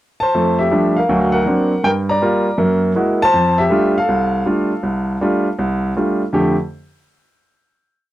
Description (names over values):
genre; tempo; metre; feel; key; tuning
solo jazz; 160 BPM; 4/4; swing 64% on 8ths; F major; A4 = 442 Hz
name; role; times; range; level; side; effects
clear baby grand piano; solo; 0.2-6.5 s; C2 to Bb5; -14 LUFS; equal; none
room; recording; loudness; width
little or no reverb; dry, close 1970s-style studio recording; -14 LUFS; side -14 dB against mid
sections
0.0-0.3 pickup bar; 0.3-6.3 A section; 6.3-7.8 final chord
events
none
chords
0.3 F69; 1.1 Daug7; 1.8 Gm7; 2.6 Gb9; 3.3 F69